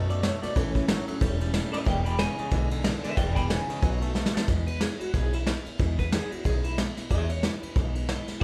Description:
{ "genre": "rockabilly", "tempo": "183 BPM", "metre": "4/4", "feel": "swing 59% on 8ths", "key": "E mixolydian", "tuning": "A4 = 440 Hz", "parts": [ { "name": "picked steel-string acoustic guitar", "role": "accompaniment", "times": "0.0-8.4 s", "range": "E2 to A4", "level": "-39 LUFS", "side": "equal", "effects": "none" }, { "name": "twangy electric guitar", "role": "riff", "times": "0.0-4.5 s", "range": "E2 to A3", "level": "-38 LUFS", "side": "equal", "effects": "none" }, { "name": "upright bass", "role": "bass", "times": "0.0-8.4 s", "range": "E1 to F#2", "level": "-32 LUFS", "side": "equal", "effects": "none" }, { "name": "electric guitar through a small old amp", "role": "melody", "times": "0.1-8.4 s", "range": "E4 to B5", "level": "-36 LUFS", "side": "equal", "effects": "tremolo" }, { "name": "soft brush drum kit", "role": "drums", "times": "0.1-8.4 s", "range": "kick drum, ride cymbal, snare drum", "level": "-30 LUFS", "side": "equal", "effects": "none" } ], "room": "moderate large studio reverb, RT60 0.9 s", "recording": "band playing live in one room", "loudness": "-27 LUFS", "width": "mono", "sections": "0.0-4.5 A section; 4.5-8.4 B section", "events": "clean electric guitar solo 0.0-4.5; drum fill 4.2-4.5", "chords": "0.0 B; 0.6 A; 1.9 E; 3.8 B; 4.5 E" }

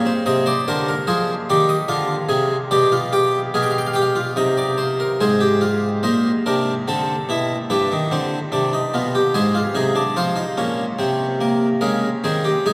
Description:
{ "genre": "classical, baroque-style 3-part fugue for harpsichord", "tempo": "73 BPM", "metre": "3/4", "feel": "straight", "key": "unclear", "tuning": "A4 = 440 Hz", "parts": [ { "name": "harpsichord", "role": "solo", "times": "0.0-12.7 s", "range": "G2 to G5", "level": "-20 LUFS", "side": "equal", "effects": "none" } ], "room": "wet cathedral reverb, RT60 6.7 s", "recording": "in a vast, echoing space", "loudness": "-20 LUFS", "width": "mono", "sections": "0.0-5.2 A section; 5.2-12.7 B section", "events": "none", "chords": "0.3 Cm; 1.9 Dm7b5; 2.7 G7/B; 4.4 Cm; 5.2 Ab; 6.9 D5; 7.7 G7; 9.4 Ab; 10.2 F5; 11.8 Bbm7/Db" }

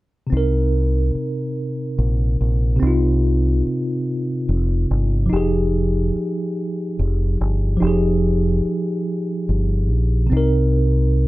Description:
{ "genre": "slow six-eight R&B", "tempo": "48 BPM (dotted quarters)", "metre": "6/8", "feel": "straight", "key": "unclear", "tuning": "A4 = 440 Hz", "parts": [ { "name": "tine electric piano", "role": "accompaniment", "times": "0.3-11.3 s", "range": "C3 to Bb4", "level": "-21 LUFS", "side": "equal", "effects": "medium stereo tremolo" }, { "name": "deep dub fingered electric bass", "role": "bass", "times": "0.3-11.3 s", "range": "F1 to C2", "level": "-18 LUFS", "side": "equal", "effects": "none" } ], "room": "light reverb", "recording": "dark, warm production", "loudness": "-17 LUFS", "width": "side -18 dB against mid", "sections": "0.3-10.3 A section", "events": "none", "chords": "0.3 Cm7; 5.3 Fm9; 10.3 Cm7" }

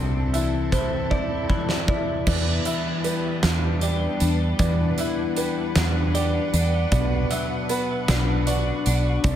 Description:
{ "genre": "post-rock", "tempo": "52 BPM (dotted quarters)", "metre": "6/8", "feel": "straight", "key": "E minor", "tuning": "A4 = 440 Hz", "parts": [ { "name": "rich studio string section", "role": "sustained chords", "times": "0.0-9.4 s", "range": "G3 to F#5", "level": "-32 LUFS", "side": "right 1 dB", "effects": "none" }, { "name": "twelve-string electric guitar", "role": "arpeggios", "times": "0.0-9.4 s", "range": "E2 to G4", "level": "-27 LUFS", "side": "left 4 dB", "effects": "analog chorus, digital delay" }, { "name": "fingered electric bass", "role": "bass", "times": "0.0-9.4 s", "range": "B1 to E2", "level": "-23 LUFS", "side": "equal", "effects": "none" }, { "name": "felt-muted upright piano", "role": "arpeggios", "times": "0.3-9.4 s", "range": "B4 to E5", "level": "-30 LUFS", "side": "right 6 dB", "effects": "digital delay" }, { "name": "huge arena drum kit", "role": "drums", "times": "0.3-9.4 s", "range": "crash cymbal, hi-hat, kick drum, snare drum", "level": "-26 LUFS", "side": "right 1 dB", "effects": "none" } ], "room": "studio ambience", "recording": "none", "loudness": "-20 LUFS", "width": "side -10 dB against mid", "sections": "0.0-2.3 A section; 2.3-9.4 B section", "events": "drum fill 1.1-2.3", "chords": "0.0 Am/C; 2.3 Em7; 6.9 Bm" }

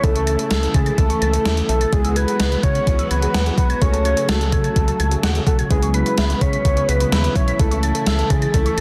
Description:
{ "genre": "synth-pop", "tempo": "127 BPM", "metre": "4/4", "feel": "straight", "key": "unclear", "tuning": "A4 = 441 Hz", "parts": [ { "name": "soft octave-layered synth lead", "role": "melody", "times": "0.0-8.8 s", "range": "G#4 to C#5", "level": "-25 LUFS", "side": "equal", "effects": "chorus, tape echo" }, { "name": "mellow tine electric piano", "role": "accompaniment", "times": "0.0-8.8 s", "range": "G#3 to A4", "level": "-30 LUFS", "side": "equal", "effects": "none" }, { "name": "string machine, full ensemble", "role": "sustained chords", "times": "0.0-8.8 s", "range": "C#3 to F#4", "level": "-29 LUFS", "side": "equal", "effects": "ensemble chorus" }, { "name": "warbly dusty pluck", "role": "arpeggios", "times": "0.0-8.8 s", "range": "G#4 to B6", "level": "-32 LUFS", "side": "equal", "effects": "chorus, tape echo" }, { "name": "rubbery square bass", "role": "bass", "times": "0.0-8.8 s", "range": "B1 to C#3", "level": "-23 LUFS", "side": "equal", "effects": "none" }, { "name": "gated 80s digital drum machine", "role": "drums", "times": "0.0-8.8 s", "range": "hi-hat, kick drum, snare drum", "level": "-22 LUFS", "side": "equal", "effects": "gated reverb, gated reverb snare, overdrive" } ], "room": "light reverb", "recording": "dense, heavily limited modern master", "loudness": "-18 LUFS", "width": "mono", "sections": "0.0-8.8 A section", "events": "none", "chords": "0.0 A/C#; 1.9 Eadd9/C#; 3.8 F#madd9/C#; 5.7 C#m7; 7.6 A/C#" }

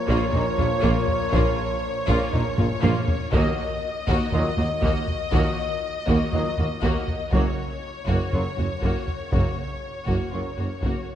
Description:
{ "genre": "cinematic, epic orchestral film score", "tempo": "120 BPM", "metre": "4/4", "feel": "straight", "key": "unclear", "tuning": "A4 = 440 Hz", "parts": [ { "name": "clear symphonic violin section", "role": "melody", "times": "0.0-11.1 s", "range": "Db5 to Eb5", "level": "-31 LUFS", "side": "left 4 dB", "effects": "none" }, { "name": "brilliant trombone section", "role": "sustained chords", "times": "0.0-10.5 s", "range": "Bb2 to Gb3", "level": "-35 LUFS", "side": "right 2 dB", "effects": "none" }, { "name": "dark French horn section", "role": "sustained chords", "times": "0.0-10.5 s", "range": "Bb3 to Bb4", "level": "-35 LUFS", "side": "left 7 dB", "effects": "none" }, { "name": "dark trumpet", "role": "stabs", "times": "0.0-10.5 s", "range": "Db5 to Eb5", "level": "-32 LUFS", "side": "right 2 dB", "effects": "none" }, { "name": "rich symphonic violin section", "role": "second line", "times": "0.1-11.1 s", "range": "Eb4 to Gb4", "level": "-33 LUFS", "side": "left 3 dB", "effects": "none" }, { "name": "clear symphonic viola section", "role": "accompaniment", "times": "0.1-11.1 s", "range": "Bb3", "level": "-32 LUFS", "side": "equal", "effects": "none" }, { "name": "rich studio cello section", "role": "bass", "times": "0.1-10.9 s", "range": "Eb2 to Bb2", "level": "-30 LUFS", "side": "right 2 dB", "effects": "none" }, { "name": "rich symphonic double bass section", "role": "bass", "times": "0.1-10.9 s", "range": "Gb1 to Eb2", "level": "-29 LUFS", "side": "right 2 dB", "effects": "none" }, { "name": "warm tuba", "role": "bass", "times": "0.1-10.9 s", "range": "Gb1 to Eb2", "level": "-31 LUFS", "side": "right 3 dB", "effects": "none" }, { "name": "solo taiko drums", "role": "drums", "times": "0.1-11.2 s", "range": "none", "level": "-26 LUFS", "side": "equal", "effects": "none" } ], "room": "moderate scoring stage reverb, RT60 2.0 s", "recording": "dark, warm production", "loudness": "-21 LUFS", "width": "side -10 dB against mid", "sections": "0.0-11.2 A section", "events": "drum fill 2.6-3.3", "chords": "0.0 Bbm; 3.3 Ebm; 7.3 Gb" }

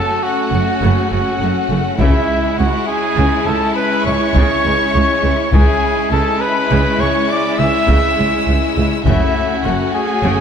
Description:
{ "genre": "cinematic, epic orchestral film score", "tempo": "68 BPM (dotted quarters)", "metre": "12/8", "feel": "straight", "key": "C# minor", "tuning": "A4 = 439 Hz", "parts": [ { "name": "warm studio violin section", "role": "melody", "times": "0.0-10.4 s", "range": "E5 to E6", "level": "-24 LUFS", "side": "left 4 dB", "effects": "none" }, { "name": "rich symphonic violin section", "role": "second line", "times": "0.0-10.4 s", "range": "C#4 to F#4", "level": "-22 LUFS", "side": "left 5 dB", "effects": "none" }, { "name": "clear studio viola section", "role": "accompaniment", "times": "0.0-10.4 s", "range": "C#3 to A3", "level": "-24 LUFS", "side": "right 1 dB", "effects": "none" }, { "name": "mellow French horn section", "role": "sustained chords", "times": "0.0-10.4 s", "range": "G#3 to E4", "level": "-24 LUFS", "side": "left 4 dB", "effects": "none" }, { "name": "warm trumpet", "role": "stabs", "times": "0.0-10.4 s", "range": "E4 to E5", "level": "-18 LUFS", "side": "right 2 dB", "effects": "none" }, { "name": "rich studio cello section", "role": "bass", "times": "0.0-10.3 s", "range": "C#2 to F#2", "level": "-21 LUFS", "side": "right 2 dB", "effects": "none" }, { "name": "clear symphonic double bass section", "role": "bass", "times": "0.5-10.3 s", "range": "F#1 to C#2", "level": "-21 LUFS", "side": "right 2 dB", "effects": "none" }, { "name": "taiko ensemble", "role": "drums", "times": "2.0-9.6 s", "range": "none", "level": "-17 LUFS", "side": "left 1 dB", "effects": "none" }, { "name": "timpani", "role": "percussion", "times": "2.0-2.8 s", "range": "C#3", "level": "-27 LUFS", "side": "equal", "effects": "none" } ], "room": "moderate concert hall reverb, RT60 2.0 s", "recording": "none", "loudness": "-13 LUFS", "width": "side -7 dB against mid", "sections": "0.0-10.4 A section", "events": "none", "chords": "0.0 F#m; 2.0 C#m; 9.1 F#m" }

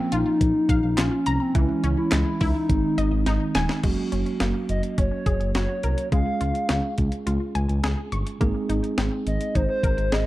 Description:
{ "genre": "synth-pop", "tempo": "105 BPM", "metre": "4/4", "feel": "straight", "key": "unclear", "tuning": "A4 = 441 Hz", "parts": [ { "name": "hollow clarinet-like synth lead", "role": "melody", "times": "0.0-10.3 s", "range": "C4 to F5", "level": "-26 LUFS", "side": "left 1 dB", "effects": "chorus, slapback echo" }, { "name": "mellow tine electric piano", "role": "accompaniment", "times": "0.0-10.3 s", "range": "Eb3 to Ab4", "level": "-28 LUFS", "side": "right 4 dB", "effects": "none" }, { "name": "wide unison pluck", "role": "arpeggios", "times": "0.1-10.3 s", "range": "Fb3 to Db6", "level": "-32 LUFS", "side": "left 2 dB", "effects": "slapback echo" }, { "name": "smooth gliding synth bass", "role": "bass", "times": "0.1-10.2 s", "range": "Eb1 to Db2", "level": "-25 LUFS", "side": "equal", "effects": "none" }, { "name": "clean 12-bit digital drum machine", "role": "drums", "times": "0.1-10.3 s", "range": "crash cymbal, handclaps, hi-hat, kick drum, snare drum", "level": "-25 LUFS", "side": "equal", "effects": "none" } ], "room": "light reverb, digital ambience", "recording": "dark, warm production", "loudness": "-21 LUFS", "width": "side -16 dB against mid", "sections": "0.0-3.8 A section; 3.8-10.3 B section", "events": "drum fill 3.3-3.8", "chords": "0.0 Bbm; 1.6 Dbm; 2.7 Ab; 3.8 Gbadd9; 6.1 Db; 8.4 Abadd9" }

